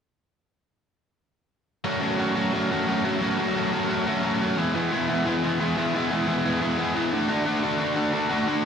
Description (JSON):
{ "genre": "punk", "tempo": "176 BPM", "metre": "4/4", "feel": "straight", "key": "unclear", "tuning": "A4 = 445 Hz", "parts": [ { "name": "crunchy overdriven guitar", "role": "solo", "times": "1.8-8.7 s", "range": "D3 to F#4", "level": "-22 LUFS", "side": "equal", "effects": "slapback echo" } ], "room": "little or no reverb", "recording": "live gig heard through the venue's PA, club reverb", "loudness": "-22 LUFS", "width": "side -7 dB against mid", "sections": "1.8-8.7 A section", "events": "none", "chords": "1.8 F#m; 4.6 E; 7.1 D", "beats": "| 1.84 2.18 2.52 2.87 | 3.21 3.55 3.89 4.23 | 4.57 4.91 5.25 5.59 | 5.93 6.27 6.61 6.95 | 7.29 7.63 7.97 8.31" }